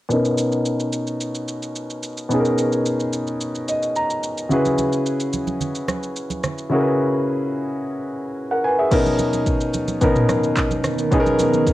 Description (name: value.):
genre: amapiano.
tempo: 109 BPM.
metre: 4/4.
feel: straight.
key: B major.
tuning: A4 = 440 Hz.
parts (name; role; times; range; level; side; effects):
warm concert grand piano; accompaniment; 0.1-11.7 s; B2 to A#5; -19 LUFS; equal; low-pass filter, plate reverb.
afro-pop drum kit; drums; 0.1-11.7 s; crash cymbal, handclaps, kick drum, rim click, shaker, toms; -24 LUFS; equal; cassette tape.
congas; percussion; 4.5-11.7 s; none; -29 LUFS; right 4 dB; none.
deep dark ambient pad; sustained chords; 9.9-11.7 s; D#3 to A#4; -26 LUFS; right 3 dB; chorus, built-in reverb, sidechain pumping, plate reverb.
room: moderate studio reverb, RT60 0.7 s.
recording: home recording on cassette.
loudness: -19 LUFS.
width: side -15 dB against mid.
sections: 0.1-8.9 A section; 8.9-11.7 B section.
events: filter sweep on grand piano 0.1-8.9; grand piano fill 3.4-4.5.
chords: 0.1 Bmaj7; 4.5 F#9sus4/C#; 8.9 Bmaj7.